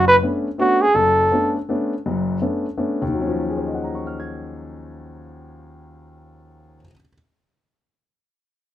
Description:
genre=jazz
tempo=164 BPM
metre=3/4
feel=swing 63% on 8ths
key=Eb dorian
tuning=A4 = 438 Hz
part: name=breathy trumpet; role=melody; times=0.0-1.5 s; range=F#4 to B4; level=-14 LUFS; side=right 1 dB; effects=none
part: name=warm grand piano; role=accompaniment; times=0.0-7.1 s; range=F#1 to Ab6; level=-23 LUFS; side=left 2 dB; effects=none
room=moderate small room reverb, RT60 0.5 s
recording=rough home demo mix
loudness=-18 LUFS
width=side -12 dB against mid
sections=0.0-3.1 A section; 3.1-5.3 B section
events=trumpet solo 0.0-3.1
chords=0.0 Bm9; 3.1 Ebm9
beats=0.21 0.58 | 0.94 1.31 1.67 | 2.04 2.40 2.77 | 3.13 3.50 3.87 | 4.23 4.60 4.96

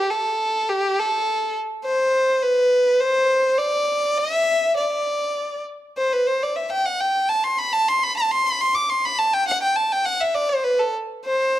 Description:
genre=indian classical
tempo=102 BPM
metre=4/4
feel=straight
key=unclear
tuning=A4 = 440 Hz
part: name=clear violin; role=solo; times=0.0-11.6 s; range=G4 to D6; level=-19 LUFS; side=equal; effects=none
room=moderate recital hall reverb, RT60 1.3 s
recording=dark, warm production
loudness=-18 LUFS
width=side -13 dB against mid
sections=0.0-11.6 A section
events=none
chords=none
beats=| 0.09 0.67 1.26 1.85 | 2.43 3.02 3.61 4.19 | 4.78 5.37 5.95 6.54 | 7.12 7.71 8.29 8.88 | 9.46 10.05 10.63 11.21

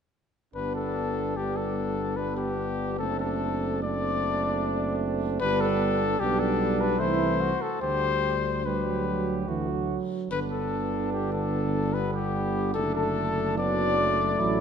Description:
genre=classical, brass quintet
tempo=74 BPM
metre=3/4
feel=rubato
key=G major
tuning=A4 = 440 Hz
part: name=mellow trumpet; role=melody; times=0.5-14.6 s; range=G4 to D5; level=-28 LUFS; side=left 5 dB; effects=none
part: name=clear flugelhorn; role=second line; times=0.5-14.6 s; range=B3 to G4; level=-33 LUFS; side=right 8 dB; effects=none
part: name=warm French horn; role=accompaniment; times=0.5-14.6 s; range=G3 to C4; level=-34 LUFS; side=left 1 dB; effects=none
part: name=dark bass trombone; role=bass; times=0.5-14.6 s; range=F#1 to D2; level=-31 LUFS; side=right 1 dB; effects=none
part: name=warm trombone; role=accompaniment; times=0.6-14.6 s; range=D3 to A3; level=-32 LUFS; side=right 4 dB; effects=none
room=moderate scoring stage reverb, RT60 2.1 s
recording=nothing above 10.7 kHz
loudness=-24 LUFS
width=side -7 dB against mid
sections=0.5-14.6 A section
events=none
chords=0.5 G; 3.0 D7/F#; 5.4 G; 7.0 Am/C; 7.8 G/D; 9.5 D; 10.3 G; 12.8 D/F#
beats=| 0.54 1.37 2.17 | 2.99 3.83 4.62 | 5.41 6.20 7.00 | 7.82 8.65 9.48 | 10.31 11.13 11.94 | 12.75 13.59 14.38

